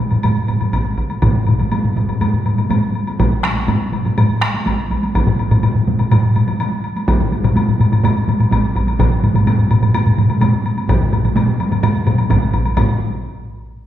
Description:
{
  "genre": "japanese traditional, taiko drum ensemble",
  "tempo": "125 BPM",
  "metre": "4/4",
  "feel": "straight",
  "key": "none",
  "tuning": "none",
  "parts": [
    { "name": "taiko ensemble", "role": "percussion", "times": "0.0-13.2 s", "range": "none", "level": "-19 LUFS", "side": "left 2 dB", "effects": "none" },
    { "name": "taiko ensemble", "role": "percussion", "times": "0.1-13.0 s", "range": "none", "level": "-20 LUFS", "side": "right 1 dB", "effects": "none" },
    { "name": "taiko ensemble", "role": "percussion", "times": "0.1-13.2 s", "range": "none", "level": "-18 LUFS", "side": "right 1 dB", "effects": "none" },
    { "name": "woodblock", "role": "percussion", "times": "0.1-13.0 s", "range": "none", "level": "-26 LUFS", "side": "left 3 dB", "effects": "none" },
    { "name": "solo taiko drums", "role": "percussion", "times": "0.7-13.0 s", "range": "none", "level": "-20 LUFS", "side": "right 1 dB", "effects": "none" }
  ],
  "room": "wet recital hall reverb, RT60 1.5 s",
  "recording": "heard from further back in the room",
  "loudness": "-13 LUFS",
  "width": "side -11 dB against mid",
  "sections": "0.0-12.8 A section; 12.8-13.9 B section",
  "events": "speeding up 0.0-13.9",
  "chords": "none"
}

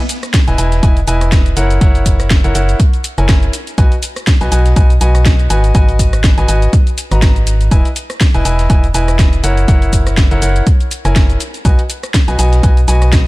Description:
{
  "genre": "piano house",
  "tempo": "122 BPM",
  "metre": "4/4",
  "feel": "swing 56% on 16ths",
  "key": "B major",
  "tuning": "A4 = 440 Hz",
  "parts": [
    { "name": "dusty soul sampler-style drum kit", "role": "drums", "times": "0.1-13.3 s", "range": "hi-hat, snare drum", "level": "-32 LUFS", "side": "right 1 dB", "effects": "none" },
    { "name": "garage drum kit", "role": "drums", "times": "0.1-13.2 s", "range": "hi-hat, rim click, shaker, snare drum", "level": "-21 LUFS", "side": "equal", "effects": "overdrive" },
    { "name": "electronic kick drum", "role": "drums", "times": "0.3-13.2 s", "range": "none", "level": "-11 LUFS", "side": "equal", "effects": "overdrive" },
    { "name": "clear grand piano", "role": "riff", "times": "0.5-13.3 s", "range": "E4 to A#5", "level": "-19 LUFS", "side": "equal", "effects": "sidechain pumping, dub echo" },
    { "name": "organ-like FM bass", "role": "bass", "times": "0.5-13.3 s", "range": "E1 to B1", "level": "-13 LUFS", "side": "equal", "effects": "tube saturation, sidechain pumping" }
  ],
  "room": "digital ambience",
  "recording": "dark, warm production",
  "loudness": "-9 LUFS",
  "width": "side -20 dB against mid",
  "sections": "0.0-13.3 A section",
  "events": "none",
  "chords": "0.0 Emaj7; 1.6 F#7; 3.5 B6; 5.5 G#m7; 7.7 Emaj7; 9.4 F#7; 11.4 B6"
}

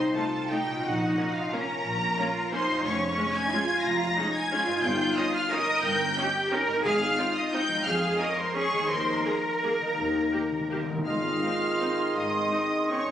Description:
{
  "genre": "classical",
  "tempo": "156-198 BPM",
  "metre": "3/4",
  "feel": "rubato",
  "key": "Ab major",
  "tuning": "A4 = 440 Hz",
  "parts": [
    { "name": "clear symphonic violin section", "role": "melody", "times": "0.0-13.1 s", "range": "F5 to Bb6", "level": "-30 LUFS", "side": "left 1 dB", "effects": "none" },
    { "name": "clear symphonic violin section", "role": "second line", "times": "0.0-13.1 s", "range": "F4 to Bb5", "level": "-34 LUFS", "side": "left 1 dB", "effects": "none" },
    { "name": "concert harp", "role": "arpeggios", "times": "0.0-13.1 s", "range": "F2 to Bb4", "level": "-34 LUFS", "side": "left 4 dB", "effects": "none" },
    { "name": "rich symphonic cello section", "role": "bass", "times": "0.0-12.5 s", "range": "Ab2 to Bb4", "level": "-29 LUFS", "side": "right 2 dB", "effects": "none" },
    { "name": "rich symphonic double bass section", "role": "bass", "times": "0.0-12.5 s", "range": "F1 to F2", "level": "-36 LUFS", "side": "right 1 dB", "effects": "none" },
    { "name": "clear symphonic viola section", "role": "accompaniment", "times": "0.2-13.0 s", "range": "Ab3 to Ab4", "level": "-35 LUFS", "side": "equal", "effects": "none" },
    { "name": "timpani", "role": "percussion", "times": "6.8-7.3, 10.0-11.6 s", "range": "Ab2 to Eb3", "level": "-38 LUFS", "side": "left 1 dB", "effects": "none" },
    { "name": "bright flute section", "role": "second line", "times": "11.1-13.1 s", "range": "C6", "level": "-33 LUFS", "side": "right 4 dB", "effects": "none" },
    { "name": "dark clarinet", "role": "second line", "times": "11.1-13.1 s", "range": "Ab4", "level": "-36 LUFS", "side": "equal", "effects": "none" },
    { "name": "warm oboe", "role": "second line", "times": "11.1-13.1 s", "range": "Eb5", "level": "-34 LUFS", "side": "right 2 dB", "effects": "none" },
    { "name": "mellow bassoon", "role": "accompaniment", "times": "11.1-13.1 s", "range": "Eb3", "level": "-34 LUFS", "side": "right 2 dB", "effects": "none" },
    { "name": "dark French horn section", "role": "sustained chords", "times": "11.1-13.1 s", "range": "Db4 to F4", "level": "-32 LUFS", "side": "equal", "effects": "none" }
  ],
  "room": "moderate scoring stage reverb, RT60 1.7 s",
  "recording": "recorded on a phone in the room, studio ambience",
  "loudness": "-24 LUFS",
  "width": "side -10 dB against mid",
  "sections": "0.0-11.1 A section; 11.1-13.1 B section",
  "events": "timpani fill 10.0-11.1",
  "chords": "0.0 Adim/C; 0.8 Bbm; 2.9 Db/F; 4.8 Eb7/G; 6.8 Ab; 7.9 Db/F; 8.9 Ebsus4; 10.0 Eb; 11.1 Ab"
}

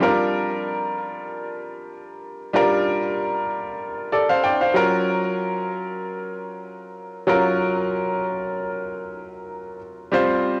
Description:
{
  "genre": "pop",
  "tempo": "95 BPM",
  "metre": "4/4",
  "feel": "swing 55% on 16ths",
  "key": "unclear",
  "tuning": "A4 = 441 Hz",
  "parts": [
    { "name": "bright grand piano", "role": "solo", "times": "0.0-10.6 s", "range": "Gb3 to G5", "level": "-24 LUFS", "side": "equal", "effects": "cassette tape" }
  ],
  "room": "wet studio reverb, RT60 0.6 s",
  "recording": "home recording on cassette",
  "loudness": "-23 LUFS",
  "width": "mono",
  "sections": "0.0-10.6 A section",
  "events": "none",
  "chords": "0.0 Bb6; 4.8 Gbmaj7"
}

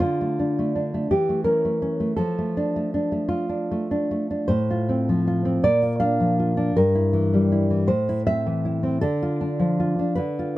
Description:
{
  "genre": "romantic piece for solo classical guitar",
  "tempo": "53 BPM (dotted quarters)",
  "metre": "6/8",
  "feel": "uneven beats, rubato",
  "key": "unclear",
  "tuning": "A4 = 440 Hz",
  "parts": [
    { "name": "nylon-string guitar", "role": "solo", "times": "0.0-10.6 s", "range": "G2 to F5", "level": "-20 LUFS", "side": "equal", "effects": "none" }
  ],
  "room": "light reverb",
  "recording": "close, detailed microphones",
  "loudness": "-20 LUFS",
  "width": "side -16 dB against mid",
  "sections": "0.0-10.6 A section",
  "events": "none",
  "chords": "0.0 Dm; 1.1 A/E; 2.2 Dm/F; 4.5 F/A; 5.6 Bb; 6.7 Edim/G; 7.9 Am; 9.0 Dm"
}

